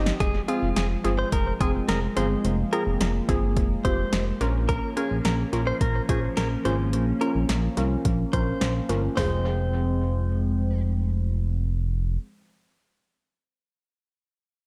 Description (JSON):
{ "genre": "synth-pop", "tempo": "107 BPM", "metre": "4/4", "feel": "straight", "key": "F minor", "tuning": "A4 = 436 Hz", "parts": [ { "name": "warbly dusty pluck", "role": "accompaniment", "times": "0.0-12.9 s", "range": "C4 to Eb5", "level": "-32 LUFS", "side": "equal", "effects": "chorus, low-pass filter, tape echo" }, { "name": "chorused pulse-width pad", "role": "sustained chords", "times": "0.0-12.2 s", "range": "Eb3 to Db4", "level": "-34 LUFS", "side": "equal", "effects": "low-pass filter" }, { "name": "smooth synth bass", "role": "bass", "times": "0.0-12.2 s", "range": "F1 to C2", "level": "-28 LUFS", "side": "equal", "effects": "none" }, { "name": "punchy analog drum machine", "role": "drums", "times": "0.1-9.3 s", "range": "hi-hat, kick drum, snare drum, toms", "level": "-30 LUFS", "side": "equal", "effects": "overdrive, tape echo" }, { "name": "direct-recorded clean electric guitar", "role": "second line", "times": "0.2-10.8 s", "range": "F4 to C5", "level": "-33 LUFS", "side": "equal", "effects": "tape echo" } ], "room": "moderate echo chamber reverb, RT60 1.3 s, digital ambience", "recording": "echo-heavy mix", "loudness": "-25 LUFS", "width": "mono", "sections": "0.2-9.2 A section; 9.2-11.4 B section", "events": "drum fill 0.0; filter sweep 0.2-9.2", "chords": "0.2 Fm; 4.4 Bbm; 9.2 Fm" }